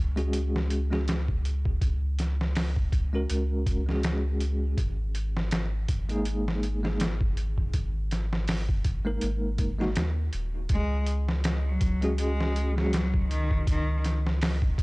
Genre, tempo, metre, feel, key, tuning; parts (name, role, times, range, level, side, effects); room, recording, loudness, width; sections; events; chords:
trip hop; 81 BPM; 4/4; swing 56% on 16ths; A4 = 439 Hz
soft dub sub bass; bass; 0.0-14.8 s; D#1 to D#2; -28 LUFS; equal; tube saturation
bell-like tine electric piano; accompaniment; 0.2-13.0 s; G#3 to A#4; -32 LUFS; equal; tremolo, tape echo
trip hop sampler-style drum kit; drums; 0.2-14.8 s; hi-hat, kick drum, snare drum; -29 LUFS; equal; vintage 12-bit sampler grit
clear cello; melody; 10.7-14.0 s; D#3 to G#3; -32 LUFS; left 1 dB; vintage 12-bit sampler grit, tape echo
little or no reverb; dry, gritty hardware recording; -25 LUFS; side -24 dB against mid
0.0-14.8 A section
0.0 C#sus4; 4.8 G#sus2; 10.7 C#sus4